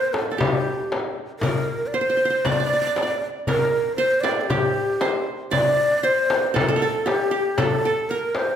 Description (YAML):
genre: Arabic maqam ensemble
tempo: 117 BPM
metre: 4/4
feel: straight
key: unclear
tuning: A4 = 440 Hz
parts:
  - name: breathy ney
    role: melody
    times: 0.0-8.6 s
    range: G4 to D5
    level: -22 LUFS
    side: equal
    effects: none
  - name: qanun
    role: second line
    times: 0.0-8.6 s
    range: G4 to D5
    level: -27 LUFS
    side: right 3 dB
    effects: none
  - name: darbuka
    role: percussion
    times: 0.1-8.5 s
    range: none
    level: -28 LUFS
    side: left 4 dB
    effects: none
  - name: frame drum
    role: percussion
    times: 0.1-8.5 s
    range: none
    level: -27 LUFS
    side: left 2 dB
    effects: none
room: wet recital hall reverb, RT60 1.4 s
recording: minimal, uncompressed stereo recording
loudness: -19 LUFS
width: side -9 dB against mid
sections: 0.0-8.6 A section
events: none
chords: none